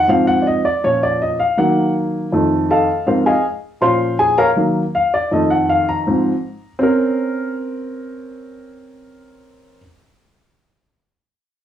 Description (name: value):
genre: jazz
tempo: 161 BPM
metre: 4/4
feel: straight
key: Bb minor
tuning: A4 = 439 Hz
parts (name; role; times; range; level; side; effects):
- warm upright piano; solo; 0.0-9.8 s; F2 to C6; -15 LUFS; equal; cassette tape
room: wet small room reverb, RT60 0.5 s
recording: home recording on cassette, studio reverb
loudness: -14 LUFS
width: side -10 dB against mid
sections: 0.0-6.8 A section; 6.8-9.8 B section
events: upright piano solo 0.0-6.8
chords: 0.1 Ab6; 0.8 Bbm; 1.6 Ebm; 2.3 F7; 3.1 Ab69; 3.8 Bbmadd9; 4.6 Ebm; 5.3 F7; 6.1 Ab69; 6.8 Bbmadd9